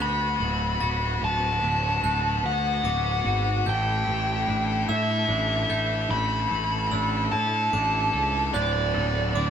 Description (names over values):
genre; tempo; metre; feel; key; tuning
post-rock; 49 BPM (dotted quarters); 6/8; straight; D major; A4 = 435 Hz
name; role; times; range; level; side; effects
overdriven electric guitar; melody; 0.0-9.5 s; D5 to B5; -26 LUFS; equal; none
pedal steel guitar; sustained chords; 0.0-9.5 s; B3 to A5; -41 LUFS; equal; none
glockenspiel with brass mallets; arpeggios; 0.0-9.5 s; D6 to A6; -35 LUFS; right 8 dB; none
twelve-string electric guitar; arpeggios; 0.0-9.5 s; D2 to A4; -33 LUFS; right 2 dB; none
tight distorted guitar; riff; 0.0-9.5 s; D2 to A4; -30 LUFS; left 6 dB; distortion
fuzz picked electric bass; bass; 0.0-9.5 s; D1 to A2; -28 LUFS; right 1 dB; overdrive
room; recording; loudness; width
moderate large studio reverb, RT60 0.9 s; band playing live in one room; -22 LUFS; side -8 dB against mid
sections
0.0-8.5 A section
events
build-up 0.0-8.5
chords
0.0 D6; 3.7 A7sus4; 8.5 D6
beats
0.00 | 1.22 2.44 | 3.67 4.89 | 6.11 7.32 | 8.54